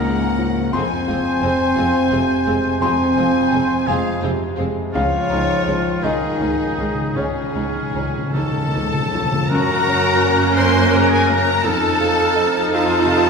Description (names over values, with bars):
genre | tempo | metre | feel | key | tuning
cinematic, emotional film score for orchestra | 50-58 BPM (dotted quarters) | 6/8 | rubato | Db major | A4 = 441 Hz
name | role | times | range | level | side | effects
rich studio violin section | melody | 0.0-13.3 s | Eb4 to C6 | -25 LUFS | left 4 dB | none
rich studio violin section | second line | 0.0-13.3 s | Ab4 to Ab5 | -26 LUFS | left 4 dB | none
warm oboe | second line | 0.0-13.3 s | Db4 to C5 | -25 LUFS | equal | none
clear baby grand piano | accompaniment | 0.0-13.3 s | Db2 to C6 | -24 LUFS | left 1 dB | none
clear studio viola section | accompaniment | 0.0-13.3 s | F3 to Eb4 | -27 LUFS | right 2 dB | none
mellow French horn section | sustained chords | 0.0-13.3 s | Db3 to Eb4 | -22 LUFS | equal | none
rich studio double bass section | bass | 0.0-13.3 s | F1 to Gb2 | -26 LUFS | right 3 dB | none
warm studio cello section | bass | 0.0-13.3 s | Db2 to Bb4 | -25 LUFS | right 3 dB | none
timpani | percussion | 4.9-9.5 s | Db3 | -26 LUFS | left 1 dB | none
clear clarinet | second line | 9.5-13.3 s | Db4 to Eb4 | -25 LUFS | equal | none
hollow concert flute | second line | 9.5-13.3 s | F6 to Gb6 | -26 LUFS | left 2 dB | none
room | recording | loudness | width
wet concert hall reverb, RT60 2.3 s | heard from further back in the room | -16 LUFS | side -5 dB against mid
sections
0.0-9.5 A section; 9.5-13.3 B section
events
timpani fill 4.9-9.5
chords
0.0 Dbadd9; 0.7 Fm; 4.9 Dbadd9; 9.5 Gb; 11.7 F7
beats
| 0.74 1.78 | 2.82 3.87 | 4.94 6.03 | 7.16 8.35 | 9.50 10.58 | 11.65 12.72